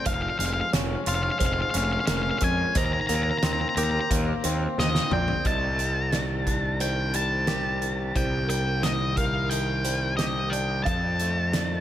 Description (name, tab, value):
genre	post-rock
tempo	89 BPM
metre	4/4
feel	straight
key	unclear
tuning	A4 = 442 Hz
part	octave-fuzz lead guitar	melody	0.0-11.8 s	Eb5 to Bb5	-28 LUFS	left 1 dB	distortion, digital delay
part	clean electric guitar	arpeggios	0.0-11.8 s	F2 to G4	-33 LUFS	left 4 dB	digital delay
part	felt-muted upright piano	arpeggios	0.0-11.8 s	Bb4 to F5	-36 LUFS	right 6 dB	digital delay
part	fuzz picked electric bass	bass	0.1-11.8 s	F1 to F2	-28 LUFS	equal	overdrive
part	loose indie drum kit	drums	0.1-11.7 s	hi-hat, kick drum, snare drum, toms	-29 LUFS	right 1 dB	none
room	light reverb, studio ambience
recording	none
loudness	-23 LUFS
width	side -12 dB against mid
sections	0.0-5.4 A section; 5.4-11.8 B section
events	drum fill 4.8-5.4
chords	0.1 Db/F; 2.8 Eb6; 5.4 Cmadd9; 10.9 F7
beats	| 0.06 0.73 1.41 2.08 | 2.75 3.42 4.10 4.77 | 5.45 6.12 6.80 7.47 | 8.15 8.82 9.50 10.18 | 10.85 11.53